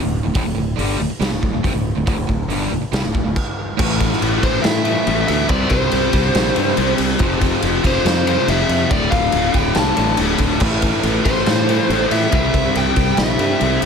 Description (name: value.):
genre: hard rock.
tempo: 140 BPM.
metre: 4/4.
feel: straight.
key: D minor.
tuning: A4 = 440 Hz.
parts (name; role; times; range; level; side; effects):
crunchy overdriven guitar; riff; 0.0-13.9 s; D2 to C4; -22 LUFS; left 13 dB; none.
distorted electric guitar; riff; 0.0-13.9 s; D2 to C4; -23 LUFS; right 14 dB; overdrive.
modern bright fingered electric bass; bass; 0.0-13.9 s; D1 to A2; -22 LUFS; equal; none.
raw garage drum kit; drums; 0.3-13.9 s; crash cymbal, hi-hat, kick drum, ride cymbal, snare drum; -20 LUFS; equal; none.
biting lead guitar; melody; 4.4-13.8 s; C5 to A5; -21 LUFS; equal; overdrive, digital delay.
room: light reverb.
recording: none.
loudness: -15 LUFS.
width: side -6 dB against mid.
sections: 0.0-3.8 A section; 3.8-13.9 B section.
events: stop 3.4-3.8.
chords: 0.0 D5; 3.8 A5; 5.5 C5; 7.2 F5; 8.9 Dm; 10.6 Am; 12.3 C.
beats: | 0.36 0.79 1.22 1.65 | 2.08 2.50 2.93 3.36 | 3.79 4.22 4.64 5.07 | 5.50 5.92 6.35 6.78 | 7.20 7.63 8.06 8.48 | 8.91 9.34 9.76 10.19 | 10.62 11.05 11.47 11.90 | 12.33 12.76 13.19 13.61.